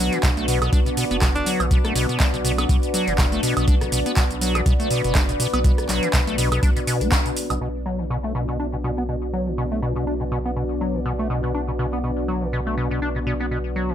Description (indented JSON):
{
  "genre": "acid house",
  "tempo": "122 BPM",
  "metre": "4/4",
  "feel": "swing 56% on 16ths",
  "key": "B minor",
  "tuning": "A4 = 440 Hz",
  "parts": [
    { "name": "dark analog pad", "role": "sustained chords", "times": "0.0-13.9 s", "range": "B3 to D5", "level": "-29 LUFS", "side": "equal", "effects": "chorus, sidechain pumping" },
    { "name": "liquid acid bass", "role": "riff", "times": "0.0-13.9 s", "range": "B2 to D4", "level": "-25 LUFS", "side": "equal", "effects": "chorus, overdrive, sidechain pumping, ping-pong delay" },
    { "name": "warm sub bass", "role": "bass", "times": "0.0-13.9 s", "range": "F#1 to B1", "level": "-28 LUFS", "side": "equal", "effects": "tube saturation, sidechain pumping" },
    { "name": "deep dark ambient pad", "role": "texture", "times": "0.0-13.9 s", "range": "D4 to F#5", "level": "-30 LUFS", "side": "left 2 dB", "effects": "chorus, built-in reverb, sidechain pumping" },
    { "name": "booming analog drum machine", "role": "drums", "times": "0.1-7.6 s", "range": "handclaps, hi-hat, rim click, shaker, woodblock", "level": "-26 LUFS", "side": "right 2 dB", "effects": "low-pass filter on hats, low-pass filter on perc, low-pass filter on snare, low-pass filter on room" },
    { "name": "electronic kick drum", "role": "drums", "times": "0.2-7.2 s", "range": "none", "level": "-20 LUFS", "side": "equal", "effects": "none" },
    { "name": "clear alto saxophone", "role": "melody", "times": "1.4-1.5 s", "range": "D4", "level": "-29 LUFS", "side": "equal", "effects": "ping-pong delay" }
  ],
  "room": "light reverb",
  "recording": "none",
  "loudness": "-19 LUFS",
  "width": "side -10 dB against mid",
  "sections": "0.0-7.6 A section; 7.6-13.9 B section",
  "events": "drop 0.0-7.6; band accent 7.1; filter sweep on acid bass 7.6-13.9",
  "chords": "0.0 Bm"
}